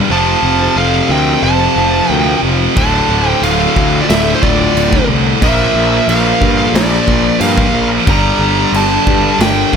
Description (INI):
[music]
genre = heavy metal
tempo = 90 BPM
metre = 4/4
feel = straight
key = D minor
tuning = A4 = 440 Hz
[part]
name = heavy high-gain guitar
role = riff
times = 0.0-9.8 s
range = D2 to Bb3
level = -16 LUFS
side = left 15 dB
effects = distortion
[part]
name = heavy high-gain guitar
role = riff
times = 0.0-9.8 s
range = D2 to Bb3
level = -16 LUFS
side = right 16 dB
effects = distortion
[part]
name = high-gain lead guitar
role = melody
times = 0.1-9.7 s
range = C5 to Bb5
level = -16 LUFS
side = right 1 dB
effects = distortion
[part]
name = smooth overdriven lead guitar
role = second line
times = 0.1-9.7 s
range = E4 to D5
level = -23 LUFS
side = right 4 dB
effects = digital delay
[part]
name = fuzz picked electric bass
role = bass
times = 0.1-9.8 s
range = D1 to G2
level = -16 LUFS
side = equal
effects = overdrive
[part]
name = big rock drum kit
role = drums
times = 2.8-9.8 s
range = crash cymbal, kick drum, snare drum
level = -17 LUFS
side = right 1 dB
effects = none
[sound]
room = little or no reverb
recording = none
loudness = -10 LUFS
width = side -6 dB against mid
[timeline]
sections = 0.0-9.8 A section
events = none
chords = 0.1 F; 2.8 Dm; 5.4 Bb; 8.1 Gm